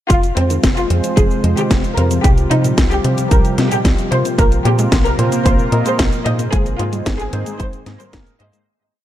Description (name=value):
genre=italo disco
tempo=112 BPM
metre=4/4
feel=straight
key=F minor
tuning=A4 = 440 Hz
part: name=warm studio violin section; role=melody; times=0.1-8.6 s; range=C4 to Eb5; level=-21 LUFS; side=equal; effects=digital delay
part: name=lush unison pad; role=sustained chords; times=0.8-8.6 s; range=C3 to C5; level=-23 LUFS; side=equal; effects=chorus
part: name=warbly dusty pluck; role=arpeggios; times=0.1-8.6 s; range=Bb2 to F4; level=-25 LUFS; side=left 1 dB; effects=chorus, vintage 12-bit sampler grit, digital delay
part: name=tight sequencer bass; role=bass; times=0.1-8.5 s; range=F1 to C3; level=-18 LUFS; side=equal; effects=tube saturation
part: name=electronic kick drum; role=drums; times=0.1-8.2 s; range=none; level=-15 LUFS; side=equal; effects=none
part: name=house drum kit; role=drums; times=0.1-8.6 s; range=cabasa, hi-hat, snare drum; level=-22 LUFS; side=equal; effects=none
part: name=chorused polysynth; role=stabs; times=0.4-8.7 s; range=Ab2 to Eb5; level=-24 LUFS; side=right 2 dB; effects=cassette tape
room=light reverb, digital ambience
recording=dark, warm production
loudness=-13 LUFS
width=side -12 dB against mid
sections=0.1-8.7 verse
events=filter sweep on analog polysynth 0.1-8.7; fade-out 5.8-8.7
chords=0.1 Fm; 2.2 Csus4; 4.4 Bbsus2; 6.5 Abadd9